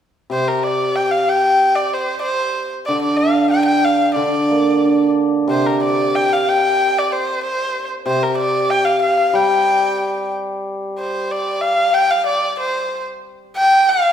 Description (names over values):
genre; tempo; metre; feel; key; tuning
chinese traditional, Chinese chamber ensemble; 93 BPM; 2/4; straight; G yu mode; A4 = 439 Hz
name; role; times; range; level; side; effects
warm erhu; melody; 0.3-14.1 s; Bb4 to G5; -16 LUFS; left 1 dB; none
hammered dulcimer; accompaniment; 0.3-11.3 s; C3 to D4; -19 LUFS; right 1 dB; none
room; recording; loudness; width
wet recital hall reverb, RT60 1.4 s; minimal, uncompressed stereo recording; -15 LUFS; side -9 dB against mid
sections
0.3-10.6 A section; 10.6-14.1 B section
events
none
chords
none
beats
| 0.31 0.96 | 1.61 2.25 | 2.89 3.53 | 4.17 4.82 | 5.47 6.13 | 6.78 7.42 | 8.07 8.70 | 9.34 9.99 | 10.64 11.29 | 11.94 12.58 | 13.22 13.86